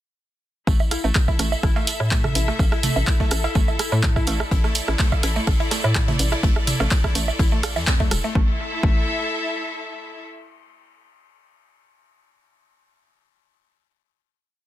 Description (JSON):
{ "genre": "minimal techno", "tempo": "125 BPM", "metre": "4/4", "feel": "swing 53% on 16ths", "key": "unclear", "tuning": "A4 = 440 Hz", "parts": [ { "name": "mallet-like synth pluck", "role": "riff", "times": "0.7-9.1 s", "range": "E3 to A4", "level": "-31 LUFS", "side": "equal", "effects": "chorus, sidechain pumping, ping-pong delay" }, { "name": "hollow knocking FM bass", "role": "bass", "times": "0.7-9.1 s", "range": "E1 to A2", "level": "-24 LUFS", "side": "equal", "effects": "sidechain pumping" }, { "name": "electronic kick drum", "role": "drums", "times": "0.7-8.9 s", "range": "none", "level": "-20 LUFS", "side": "equal", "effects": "overdrive, studio ambience" }, { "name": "tambourine", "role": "percussion", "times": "0.7-8.3 s", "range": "none", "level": "-32 LUFS", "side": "right 6 dB", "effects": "none" }, { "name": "clear studio string section", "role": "texture", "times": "0.7-10.2 s", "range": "E4 to E5", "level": "-29 LUFS", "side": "left 1 dB", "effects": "sidechain pumping" }, { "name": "swarming drone", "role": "texture", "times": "1.5-8.4 s", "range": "A4", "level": "-38 LUFS", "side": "left 3 dB", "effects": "built-in reverb, sidechain pumping" }, { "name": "booming analog drum machine", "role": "percussion", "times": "0.8-8.3 s", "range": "cowbell, rim click, toms, woodblock", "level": "-27 LUFS", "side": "right 5 dB", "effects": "studio ambience, soft clipping on snare, dub echo" }, { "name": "punchy analog drum machine", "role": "drums", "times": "0.9-8.2 s", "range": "handclaps, hi-hat", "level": "-25 LUFS", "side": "equal", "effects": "overdrive, studio ambience" }, { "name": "open jazz drum kit", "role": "drums", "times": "4.5-8.2 s", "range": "ride cymbal, snare drum", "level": "-34 LUFS", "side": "left 4 dB", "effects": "sidechain pumping on cymbals, high-pass filter on cymbals, studio ambience, high-pass filter on snare, high-pass filter on room" } ], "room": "light reverb", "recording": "dense, heavily limited modern master", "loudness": "-18 LUFS", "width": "side -14 dB against mid", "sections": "0.7-8.4 groove; 8.4-10.3 final chord", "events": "band accent 7.9", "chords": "0.7 A5" }